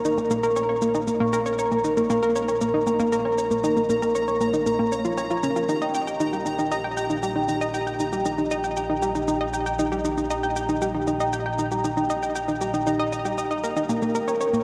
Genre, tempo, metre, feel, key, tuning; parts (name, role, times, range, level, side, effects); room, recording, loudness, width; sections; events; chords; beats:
ambient, sequencer-driven space music; 117 BPM; 4/4; straight; A4 = 438 Hz
vibraphone with medium mallets; arpeggios; 0.0-14.6 s; G4 to Db6; -28 LUFS; equal; low-pass filter, shimmer reverb, delay
analog drone; bass; 0.0-14.6 s; Bb1; -40 LUFS; equal; chorus
shaker and woodblock; percussion; 0.0-14.6 s; -42 LUFS; equal; delay
pulsing gated texture; texture; 0.0-14.6 s; G5 to Bb5; -35 LUFS; equal; chorus, built-in reverb, shimmer reverb
analog pluck; riff; 0.1-14.6 s; Bb3 to G5; -27 LUFS; equal; chorus, shimmer reverb, delay
wet cathedral reverb, RT60 7.1 s; in a vast, echoing space, cassette tape; -24 LUFS; mono
0.0-14.6 A section
fade-in on synth drone 0.0-14.6; filter sweep on vibraphone 0.0-14.6
0.0 Bbm; 5.7 Ebadd9/Bb; 13.9 Bbm
0.05 0.56 1.07 | 1.59 2.10 2.61 3.13 | 3.64 4.15 4.66 5.18 | 5.69 6.20 6.72 7.23 | 7.74 8.25 8.77 9.28 | 9.79 10.30 10.82 11.33 | 11.84 12.36 12.87 13.38 | 13.89 14.41